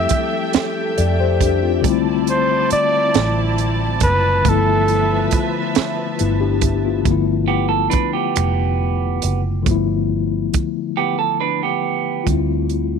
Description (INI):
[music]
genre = slow six-eight R&B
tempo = 46 BPM (dotted quarters)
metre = 6/8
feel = straight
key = unclear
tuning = A4 = 440 Hz
[part]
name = warm flugelhorn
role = melody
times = 0.0-5.4 s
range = A4 to E5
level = -20 LUFS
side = right 1 dB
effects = tape echo
[part]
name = mellow tine electric piano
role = accompaniment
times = 0.0-13.0 s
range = D3 to D5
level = -21 LUFS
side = left 13 dB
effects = medium stereo tremolo
[part]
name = warm symphonic string section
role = sustained chords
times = 0.0-7.0 s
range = F3 to A5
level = -25 LUFS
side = right 3 dB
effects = none
[part]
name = vintage muted fingered electric bass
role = bass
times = 0.0-13.0 s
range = F1 to F2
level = -20 LUFS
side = right 1 dB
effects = none
[part]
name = compact cocktail drum kit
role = drums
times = 0.1-12.9 s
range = finger snaps, hi-hat, kick drum, snare drum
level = -20 LUFS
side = right 5 dB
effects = none
[part]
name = clean electric guitar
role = second line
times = 7.5-12.2 s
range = B3 to B4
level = -20 LUFS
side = right 15 dB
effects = none
[sound]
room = light reverb, studio reverb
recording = 1960s-style stereo with parts hard left and right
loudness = -16 LUFS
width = side -6 dB against mid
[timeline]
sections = 0.0-7.1 A section; 7.1-12.3 B section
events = silent gap 11.0-12.3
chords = 0.0 Fmaj9; 1.8 C69; 4.4 G13; 12.3 Dm11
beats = 0.53 | 1.84 3.14 | 4.45 5.75 | 7.06 8.36 | 9.66 10.97 | 12.27